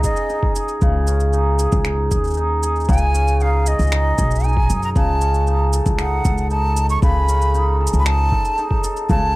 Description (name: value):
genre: folktronica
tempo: 116 BPM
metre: 4/4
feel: straight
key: unclear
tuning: A4 = 440 Hz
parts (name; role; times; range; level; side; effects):
- breathy jazz flute; melody; 0.0-9.4 s; Eb5 to Db6; -23 LUFS; equal; tape echo
- cimbalom; arpeggios; 0.0-9.4 s; Db3 to A4; -22 LUFS; right 1 dB; tape echo
- electronic kick drum; drums; 0.0-9.2 s; none; -20 LUFS; equal; none
- electronic shaker and finger snaps; drums; 0.0-9.2 s; none; -29 LUFS; right 2 dB; none
- upright bass; bass; 0.8-9.4 s; Cb2 to Gb2; -18 LUFS; equal; tube saturation
room: little or no reverb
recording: dry, close 1970s-style studio recording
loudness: -15 LUFS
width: side -19 dB against mid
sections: 0.0-9.4 A section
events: none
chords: 0.0 Dbsus2; 5.0 Gbm6/Db (rootless)